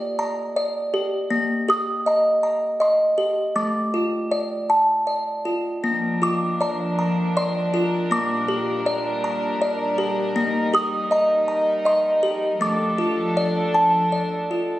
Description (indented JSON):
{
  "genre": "children's music, lullaby",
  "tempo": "80 BPM",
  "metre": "3/4",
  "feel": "rubato",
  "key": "Bb major",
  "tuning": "A4 = 439 Hz",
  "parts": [
    { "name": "music box", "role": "melody", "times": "0.0-14.8 s", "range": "A3 to Eb6", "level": "-20 LUFS", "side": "equal", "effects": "none" },
    { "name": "dark studio string section", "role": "sustained chords", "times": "5.8-14.8 s", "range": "Bb2 to Bb4", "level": "-24 LUFS", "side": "equal", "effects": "none" }
  ],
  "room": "moderate concert hall reverb, RT60 2.0 s",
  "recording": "recorded on a phone in the room, studio reverb",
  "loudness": "-19 LUFS",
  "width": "side -15 dB against mid",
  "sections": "0.0-5.8 A section; 5.8-14.8 A section",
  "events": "none",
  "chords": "0.0 Gm/Bb; 1.3 Eb; 3.6 F6; 5.8 Bb; 8.1 Gm/Bb; 10.4 Eb; 12.6 F6"
}